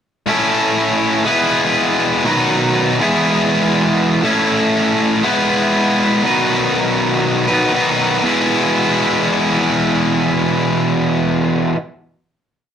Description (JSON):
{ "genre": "rock", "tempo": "121 BPM", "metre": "4/4", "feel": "straight", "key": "E major", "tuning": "A4 = 440 Hz", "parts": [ { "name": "distorted electric guitar", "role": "solo", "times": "0.3-11.8 s", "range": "E2 to B4", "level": "-13 LUFS", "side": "equal", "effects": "overdrive" } ], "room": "wet studio reverb, RT60 0.6 s", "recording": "rough rehearsal-room recording, tube saturation", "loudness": "-13 LUFS", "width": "side -8 dB against mid", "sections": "0.3-8.2 pre-chorus; 8.2-12.2 final chord", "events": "none", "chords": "0.3 A; 1.3 E/G#; 2.3 B; 3.0 E; 4.2 A; 5.2 E/G#; 6.2 B; 8.2 E", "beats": "| 0.27 0.77 1.26 1.76 | 2.25 2.75 3.25 3.75 | 4.25 4.75 5.24 5.74 | 6.24 6.74 7.24 7.74 | 8.23 8.73 9.23 9.72 | 10.22 10.71 11.21 11.70" }